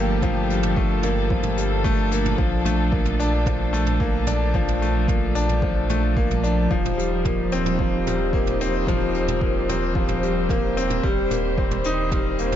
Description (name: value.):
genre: piano and strings electronica.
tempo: 111 BPM.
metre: 4/4.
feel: straight.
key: unclear.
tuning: A4 = 441 Hz.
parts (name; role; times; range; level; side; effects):
dark studio string section; sustained chords; 0.0-12.6 s; Eb3 to C5; -28 LUFS; right 1 dB; sidechain pumping.
bright grand piano; riff; 0.0-12.6 s; F3 to Eb4; -24 LUFS; left 2 dB; ping-pong delay.
warm sub bass; bass; 0.0-12.6 s; Eb1 to Bb1; -25 LUFS; equal; sidechain pumping.
electronic kick drum; drums; 0.2-12.2 s; none; -25 LUFS; equal; none.
jazz brush drum kit; drums; 0.2-12.6 s; hi-hat, toms; -33 LUFS; right 4 dB; none.
room: small room ambience.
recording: dark, warm production, nothing above 7.6 kHz.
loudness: -19 LUFS.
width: side -10 dB against mid.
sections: 0.0-12.6 A section.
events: none.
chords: 0.0 Gm9; 2.4 Bbmaj7; 6.7 Eb69; 11.0 Cm7/Eb.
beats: | 0.22 0.76 1.30 1.84 | 2.39 2.93 3.47 4.01 | 4.55 5.09 5.63 6.17 | 6.71 7.25 7.79 8.33 | 8.87 9.41 9.95 10.49 | 11.03 11.57 12.12.